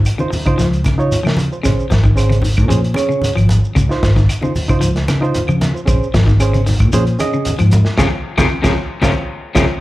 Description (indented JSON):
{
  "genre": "afrobeat",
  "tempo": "114 BPM",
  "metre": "4/4",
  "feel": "straight",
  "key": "unclear",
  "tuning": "A4 = 438 Hz",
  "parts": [
    { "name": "electric guitar at the edge of break-up", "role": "arpeggios", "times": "0.0-9.6 s", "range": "C3 to F3", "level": "-20 LUFS", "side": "left 3 dB", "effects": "spring reverb, slapback echo" },
    { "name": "vintage muted fingered electric bass", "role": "bass", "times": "0.0-9.7 s", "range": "Ab1 to Db3", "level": "-15 LUFS", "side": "equal", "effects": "none" },
    { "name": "crunchy breakbeat drum kit", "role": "drums", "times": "0.1-9.7 s", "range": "hi-hat, kick drum, snare drum", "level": "-19 LUFS", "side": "equal", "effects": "none" },
    { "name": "claves", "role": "percussion", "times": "0.1-9.7 s", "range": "none", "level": "-29 LUFS", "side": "right 1 dB", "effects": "none" },
    { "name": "congas", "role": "percussion", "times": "0.1-9.7 s", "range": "none", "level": "-23 LUFS", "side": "equal", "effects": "none" },
    { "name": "shekere", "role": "percussion", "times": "0.1-9.7 s", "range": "none", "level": "-26 LUFS", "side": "right 1 dB", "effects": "none" },
    { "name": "bright reed electric piano", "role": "accompaniment", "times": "0.2-9.6 s", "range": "Db4 to Eb5", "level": "-20 LUFS", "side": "right 3 dB", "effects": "slapback echo" }
  ],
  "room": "small room ambience",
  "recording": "live gig heard through the venue's PA, club reverb",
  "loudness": "-12 LUFS",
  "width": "side -17 dB against mid",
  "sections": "0.0-9.8 A section",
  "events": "band accent 8.0-9.8",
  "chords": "0.0 Dbmaj7; 1.6 Bbm7; 3.8 Dbmaj7; 5.9 Bbm7; 8.0 Dbmaj7"
}